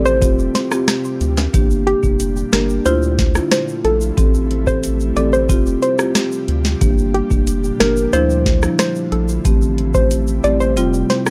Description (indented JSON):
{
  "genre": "dancehall",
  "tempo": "91 BPM",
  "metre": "4/4",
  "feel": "straight",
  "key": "G dorian",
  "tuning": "A4 = 440 Hz",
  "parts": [
    { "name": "marimba with soft mallets", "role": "accompaniment", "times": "0.0-11.3 s", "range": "F3 to A4", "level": "-22 LUFS", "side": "equal", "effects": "none" },
    { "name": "ethereal airy pad", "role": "sustained chords", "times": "0.0-11.3 s", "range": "Bb2 to G4", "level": "-30 LUFS", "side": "equal", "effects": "ensemble chorus, built-in reverb, sidechain pumping" },
    { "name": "round analog bass", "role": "bass", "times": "0.0-11.0 s", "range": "F1 to D2", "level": "-22 LUFS", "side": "equal", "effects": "none" },
    { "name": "soft round pluck", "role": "melody", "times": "0.1-11.2 s", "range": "G4 to D5", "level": "-22 LUFS", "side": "equal", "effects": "chorus" },
    { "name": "egg shaker and timbales", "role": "percussion", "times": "0.1-11.3 s", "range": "none", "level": "-34 LUFS", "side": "equal", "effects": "none" },
    { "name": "booming analog drum machine", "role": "drums", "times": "0.2-11.3 s", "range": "hi-hat, kick drum, rim click, snare drum", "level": "-19 LUFS", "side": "equal", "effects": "none" }
  ],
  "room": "little or no reverb",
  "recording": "dry, gritty hardware recording",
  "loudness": "-16 LUFS",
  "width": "mono",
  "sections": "0.0-11.3 A section",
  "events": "kick muted 10.8-11.3",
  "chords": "0.2 Fsus2; 1.5 Gm; 2.9 Dmadd9; 4.2 Am7; 5.5 Fsus2; 6.8 Gm; 8.1 Dmadd9; 9.5 Am7; 10.8 Fsus2"
}